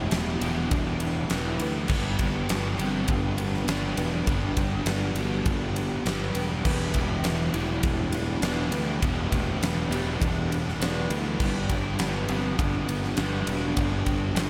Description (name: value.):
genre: rock, shoegaze and dream pop.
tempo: 101 BPM.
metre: 4/4.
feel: straight.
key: E minor.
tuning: A4 = 436 Hz.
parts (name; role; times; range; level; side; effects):
pure sine lead; melody; 0.0-14.5 s; A3 to G4; -38 LUFS; equal; chorus, tremolo, tape echo.
picked twelve-string acoustic guitar; arpeggios; 0.0-14.5 s; B3 to G4; -41 LUFS; equal; subtle chorus, tape echo.
overdriven semi-hollow guitar; riff; 0.0-14.5 s; E3 to G4; -37 LUFS; equal; none.
thick fuzz guitar; riff; 0.0-14.5 s; E2 to G4; -36 LUFS; equal; distortion, analog chorus.
fuzz fingered electric bass; bass; 0.0-14.5 s; E1 to D2; -32 LUFS; equal; overdrive.
huge arena drum kit; drums; 0.1-14.5 s; crash cymbal, kick drum, ride cymbal, snare drum; -31 LUFS; equal; none.
electric guitar through a small old amp; riff; 6.6-14.5 s; E2 to D4; -40 LUFS; equal; none.
room: moderate huge ambient reverb, RT60 7.7 s.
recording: dreamy mix soaked in reverb.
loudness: -27 LUFS.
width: mono.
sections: 0.0-14.5 A section.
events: none.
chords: 0.0 Em7.